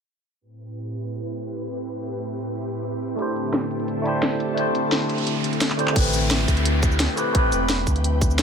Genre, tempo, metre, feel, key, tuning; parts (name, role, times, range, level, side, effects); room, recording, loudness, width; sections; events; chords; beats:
liquid drum and bass; 173 BPM; 4/4; straight; A minor; A4 = 440 Hz
ethereal airy pad; sustained chords; 0.6-8.4 s; A2 to G5; -28 LUFS; equal; ensemble chorus, built-in reverb, sidechain pumping
barky tine electric piano; accompaniment; 3.2-8.4 s; A3 to C5; -24 LUFS; equal; overdrive, phaser, dub echo
drum and bass drum kit; drums; 3.2-8.4 s; crash cymbal, handclaps, hi-hat, rim click, shaker, snare drum; -24 LUFS; equal
noise sweep and downlifter; sound effects; 4.9-8.4 s; -29 LUFS; equal
sub bass with octave; bass; 6.0-8.4 s; E1 to D2; -23 LUFS; equal
electronic kick drum; drums; 6.0-8.3 s; -21 LUFS; equal
light reverb; low-pass filter; -20 LUFS; side -6 dB against mid
0.4-6.0 A section; 6.0-8.4 B section
filter sweep 0.4-6.0; noise sweep 4.9-6.0; drum fill 5.7; drop 6.0-8.4
0.4 Am9; 3.2 D9sus4; 6.0 Am9
| 0.41 0.76 1.11 1.45 | 1.80 2.15 2.49 2.84 | 3.19 3.54 3.88 4.23 | 4.58 4.92 5.27 5.62 | 5.96 6.31 6.66 7.00 | 7.35 7.70 8.04 8.39